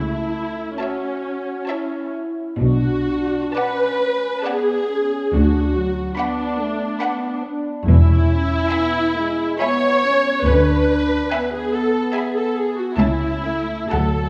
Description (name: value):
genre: classical, slow romantic movement for symphony orchestra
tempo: 60-74 BPM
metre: 3/4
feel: rubato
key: A major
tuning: A4 = 440 Hz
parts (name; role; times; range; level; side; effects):
- dark studio viola section; accompaniment; 0.0-14.3 s; C#4 to C#5; -24 LUFS; equal; none
- dark French horn section; sustained chords; 0.0-14.3 s; F#3 to F#4; -27 LUFS; equal; none
- clear studio cello section; bass; 0.0-14.3 s; C#2 to C#3; -23 LUFS; equal; none
- rich studio double bass section; bass; 0.0-14.3 s; E1 to D2; -24 LUFS; equal; none
- rich studio violin section; melody; 0.8-14.3 s; A5 to B5; -37 LUFS; equal; none
- clear studio violin section; second line; 0.8-14.3 s; C#5 to A5; -31 LUFS; equal; none
- timpani; percussion; 7.9-9.1 s; E2; -26 LUFS; equal; none
room: wet scoring stage reverb, RT60 1.9 s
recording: heard from further back in the room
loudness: -20 LUFS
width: mono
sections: 0.0-14.3 A section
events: none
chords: 0.0 A/C#; 2.6 Bm7; 5.3 Bm/D; 7.9 E; 10.5 E7/D; 13.0 A/C#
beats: 0.79 1.68 | 2.59 3.55 4.45 | 5.33 6.17 7.01 | 7.87 8.70 9.60 | 10.45 11.32 12.15 | 12.97 13.92